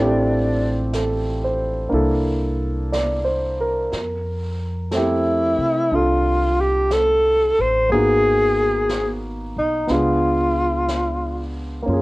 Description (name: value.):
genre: jazz ballad.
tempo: 60 BPM.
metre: 4/4.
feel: swing 67% on 8ths.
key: F major.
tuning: A4 = 440 Hz.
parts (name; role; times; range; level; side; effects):
mellow alto saxophone; melody; 0.0-11.6 s; D4 to C5; -18 LUFS; equal; cassette tape.
warm grand piano; accompaniment; 0.0-12.0 s; A3 to E5; -22 LUFS; right 1 dB; cassette tape.
upright bass; bass; 0.0-12.0 s; Ab1 to C3; -24 LUFS; equal; none.
jazz brush drum kit; drums; 0.9-12.0 s; brushed snare drum, hi-hat, snare drum; -34 LUFS; right 1 dB; cassette tape.
room: light reverb.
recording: home recording on cassette.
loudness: -17 LUFS.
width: side -20 dB against mid.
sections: 0.0-3.9 A section; 3.9-12.0 B section.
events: alto saxophone solo 0.0-3.9.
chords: 0.0 Fmaj9; 1.9 C13; 3.9 Fmaj9; 7.9 Abm9; 9.9 Db7b9.